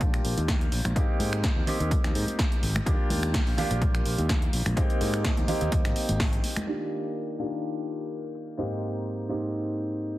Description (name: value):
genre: filtered disco house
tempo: 126 BPM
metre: 4/4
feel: swing 54% on 16ths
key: Eb major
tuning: A4 = 441 Hz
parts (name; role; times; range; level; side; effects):
- clear concert grand piano; accompaniment; 0.0-10.2 s; Ab2 to G4; -31 LUFS; equal; phaser, sidechain pumping, low-pass filter
- modern bright fingered electric bass; bass; 0.0-6.4 s; Ab1 to Ab2; -29 LUFS; equal; sidechain pumping, low-pass filter
- electronic kick drum; drums; 0.0-6.3 s; none; -26 LUFS; equal; overdrive
- punchy analog drum machine; drums; 0.0-10.2 s; crash cymbal, finger snaps, hi-hat, shaker, snare drum; -33 LUFS; equal; overdrive, low-pass filter on hats, low-pass filter on snare, low-pass filter on cymbals, low-pass filter on perc
- tambourine and congas; percussion; 0.0-6.7 s; none; -37 LUFS; right 1 dB; none
room: light reverb, digital ambience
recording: heavily compressed radio sound, multiband compression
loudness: -24 LUFS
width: side -16 dB against mid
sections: 0.0-6.7 A section; 6.7-10.2 B section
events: filter sweep 6.7-10.2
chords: 0.0 Ebmaj9; 1.0 Abmaj9; 2.9 Ebmaj9; 4.8 Abmaj9; 6.7 Ebmaj9; 8.6 Abmaj9